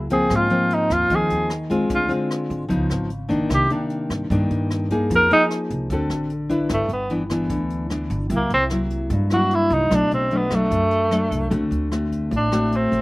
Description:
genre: bossa nova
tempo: 150 BPM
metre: 4/4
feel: straight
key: G major from 6.7 s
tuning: A4 = 445 Hz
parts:
  - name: nylon-string guitar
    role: accompaniment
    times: 0.0-13.0 s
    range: F#2 to Cb5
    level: -22 LUFS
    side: left 1 dB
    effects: none
  - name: upright bass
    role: bass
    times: 0.0-13.0 s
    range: G1 to Ab2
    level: -27 LUFS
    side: equal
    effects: none
  - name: breathy tenor saxophone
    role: melody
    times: 0.1-13.0 s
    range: A3 to Bb4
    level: -19 LUFS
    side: right 1 dB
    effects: none
  - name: jazz brush drum kit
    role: drums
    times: 0.1-13.0 s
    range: hi-hat, kick drum, rim click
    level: -33 LUFS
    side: equal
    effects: none
room: little or no reverb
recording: recorded outdoors, with no room sound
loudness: -18 LUFS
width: side -21 dB against mid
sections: 0.0-6.7 A section; 6.7-13.0 A section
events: tenor saxophone solo 0.0-6.7, 6.7-13.0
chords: 0.3 Ab69; 1.9 Dm7b5; 2.7 Db9; 3.5 Cm9; 5.1 Fm7; 5.9 D7; 6.7 G6; 8.3 C7#11; 9.9 Bm7; 11.5 D7

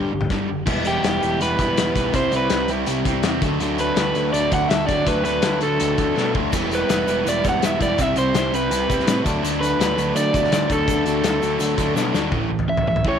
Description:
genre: indie rock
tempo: 165 BPM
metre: 4/4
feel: straight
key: unclear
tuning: A4 = 440 Hz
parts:
  - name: crunchy overdriven guitar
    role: melody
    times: 0.0-13.2 s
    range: G4 to F#5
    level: -23 LUFS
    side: right 1 dB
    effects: none
  - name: crunchy overdriven guitar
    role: riff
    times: 0.0-13.2 s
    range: G2 to E4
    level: -22 LUFS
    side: equal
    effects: none
  - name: growling picked electric bass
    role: bass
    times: 0.0-13.2 s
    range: E1 to B2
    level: -28 LUFS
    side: right 2 dB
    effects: overdrive
  - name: loose indie drum kit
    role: drums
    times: 0.2-13.1 s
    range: crash cymbal, hi-hat, kick drum, snare drum, toms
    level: -24 LUFS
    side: left 3 dB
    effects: none
  - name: egg shaker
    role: percussion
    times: 6.5-12.2 s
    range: none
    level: -41 LUFS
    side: right 15 dB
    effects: none
room: light reverb, small room ambience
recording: 1960s-style stereo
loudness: -18 LUFS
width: side -8 dB against mid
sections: 0.7-12.3 A section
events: drum fill 6.2-6.5, 12.0-12.3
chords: 0.0 Gmaj7(no3); 0.7 Em; 2.1 Cmaj7; 3.4 D6; 6.5 Em; 8.0 Cmaj7; 9.3 D; 12.3 A5

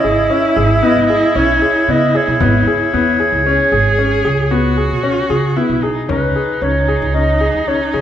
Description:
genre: contemporary instrumental, chamber music in an uneven meter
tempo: 114 BPM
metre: 7/4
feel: straight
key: C# minor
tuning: A4 = 440 Hz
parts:
  - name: mellow clarinet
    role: melody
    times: 0.0-8.0 s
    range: B4 to E5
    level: -16 LUFS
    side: equal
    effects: none
  - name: rich viola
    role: second line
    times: 0.0-8.0 s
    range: D#4 to G#4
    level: -19 LUFS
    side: right 3 dB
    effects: none
  - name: clear concert grand piano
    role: arpeggios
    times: 0.0-8.0 s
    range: B3 to G#4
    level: -18 LUFS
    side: left 4 dB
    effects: none
  - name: upright bass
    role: bass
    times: 0.0-8.0 s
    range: G#1 to C#3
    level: -19 LUFS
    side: right 2 dB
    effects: none
  - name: frame drum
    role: percussion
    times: 0.3-8.0 s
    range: none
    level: -26 LUFS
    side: left 2 dB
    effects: none
room: wet recital hall reverb, RT60 1.4 s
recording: minimal, uncompressed stereo recording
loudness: -12 LUFS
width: side -10 dB against mid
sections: 0.0-6.1 A section; 6.1-8.0 B section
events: none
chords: 0.0 C#m9; 6.1 C#sus2

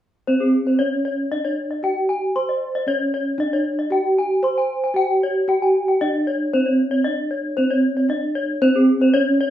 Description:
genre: gamelan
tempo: 115 BPM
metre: 4/4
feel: straight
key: C pelog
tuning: A4 = 440 Hz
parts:
  - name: gamelan-type bronze metallophone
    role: melody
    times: 0.3-9.5 s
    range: C4 to C5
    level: -19 LUFS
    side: right 1 dB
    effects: none
  - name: gamelan-type bronze metallophone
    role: arpeggios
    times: 0.3-9.5 s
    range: Ab4-40c to C6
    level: -23 LUFS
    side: left 4 dB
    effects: none
room: wet large studio reverb, RT60 0.9 s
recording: band playing live in one room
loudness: -17 LUFS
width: side -11 dB against mid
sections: 0.3-9.5 A section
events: none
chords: none

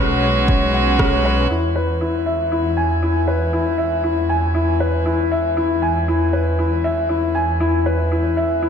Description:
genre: piano and strings electronica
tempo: 118 BPM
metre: 4/4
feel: straight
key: E major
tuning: A4 = 442 Hz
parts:
  - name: warm string quartet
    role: sustained chords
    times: 0.0-8.7 s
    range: G#3 to B4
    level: -25 LUFS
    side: right 1 dB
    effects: sidechain pumping
  - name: felt-muted upright piano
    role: riff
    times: 0.0-8.7 s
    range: C#4 to G#5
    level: -19 LUFS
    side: left 2 dB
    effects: low-pass filter, diffuse ambient delay
  - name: dark detuned saw bass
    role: bass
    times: 0.0-8.7 s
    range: B1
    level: -21 LUFS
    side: right 1 dB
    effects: sidechain pumping
  - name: electronic kick drum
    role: drums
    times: 0.5-1.1 s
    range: none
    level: -20 LUFS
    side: right 1 dB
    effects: overdrive
  - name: electronic rim click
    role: drums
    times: 1.0-1.1 s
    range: none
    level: -26 LUFS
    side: equal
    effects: overdrive, low-pass filter on snare, low-pass filter on room
room: moderate plate reverb, RT60 1.6 s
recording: dreamy mix soaked in reverb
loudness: -16 LUFS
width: side -7 dB against mid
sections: 0.0-1.5 A section; 1.5-8.7 B section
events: band accent 1.0; fade-in on string quartet 1.5-8.7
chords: 0.0 Bsus2; 1.5 E

